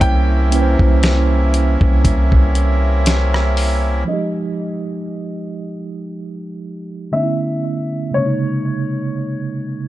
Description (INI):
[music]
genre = contemporary R&B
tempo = 59 BPM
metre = 4/4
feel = swing 54% on 16ths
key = F minor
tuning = A4 = 440 Hz
[part]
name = warm baby grand piano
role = melody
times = 0.0-9.9 s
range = Db5 to G5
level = -26 LUFS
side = left 2 dB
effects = low-pass filter, digital delay
[part]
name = mellow tine electric piano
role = accompaniment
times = 0.0-9.9 s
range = C3 to C5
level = -21 LUFS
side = right 3 dB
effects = medium stereo tremolo, low-pass filter
[part]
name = accordion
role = sustained chords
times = 0.0-4.0 s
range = C3 to E4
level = -23 LUFS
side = equal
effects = none
[part]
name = long sustained 808-style bass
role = bass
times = 0.0-4.0 s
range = C2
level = -15 LUFS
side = equal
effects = none
[part]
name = dusty soul sampler-style drum kit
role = drums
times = 0.0-3.8 s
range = hi-hat, kick drum, rim click, snare drum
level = -16 LUFS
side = equal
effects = none
[sound]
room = digital ambience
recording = dark, warm production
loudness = -15 LUFS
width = side -15 dB against mid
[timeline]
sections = 0.0-4.1 A section; 4.1-9.9 B section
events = filter sweep 4.1-9.9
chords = 0.0 C7b9; 4.1 Fm9; 7.1 Bm11; 8.1 Bbm11